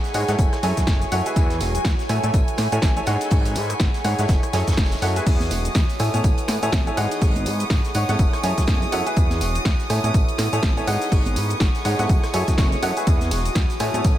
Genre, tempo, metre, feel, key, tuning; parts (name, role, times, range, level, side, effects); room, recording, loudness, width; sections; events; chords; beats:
piano house; 123 BPM; 4/4; swing 58% on 16ths; E major; A4 = 438 Hz
bright chamber violin section; sustained chords; 0.0-14.2 s; G#5 to D#6; -31 LUFS; right 2 dB; sidechain pumping
clear baby grand piano; riff; 0.0-14.2 s; D#4 to G#5; -26 LUFS; equal; sidechain pumping, dub echo
punchy analog drum machine; drums; 0.0-14.2 s; cabasa, crash cymbal, hi-hat, ride cymbal, rim click, snare drum; -29 LUFS; equal
tight funk drum kit; drums; 0.0-14.2 s; hi-hat, snare drum, tambourine; -38 LUFS; equal; sidechain pumping on hats, high-pass filter on hats, high-pass filter on snare, sidechain pumping on perc, high-pass filter on perc, high-pass filter on room, dub echo
granular cloud pad; texture; 0.0-14.2 s; C#6; -30 LUFS; equal; built-in reverb, sidechain pumping
fat analog bass; bass; 0.1-14.1 s; E1 to A2; -24 LUFS; equal; sidechain pumping
electronic kick drum; drums; 0.4-14.2 s; -19 LUFS; equal
tambourine and congas; percussion; 5.3-14.2 s; -35 LUFS; right 2 dB
light reverb, small room ambience; echo-heavy mix; -18 LUFS; side -13 dB against mid
0.0-14.2 A section
0.4 F#m7; 1.4 E; 2.1 Amaj7; 3.1 G#7sus4; 4.3 F#m7; 5.3 E; 6.0 Amaj7; 7.0 G#7sus4; 8.2 F#m7; 9.2 E; 9.9 Amaj7; 10.9 G#7sus4; 12.1 F#m7; 13.1 E
0.39 0.88 | 1.36 1.85 2.34 2.83 | 3.31 3.80 4.29 4.78 | 5.26 5.75 6.24 6.73 | 7.22 7.70 8.19 8.68 | 9.17 9.65 10.14 10.63 | 11.12 11.61 12.09 12.58 | 13.07 13.56 14.04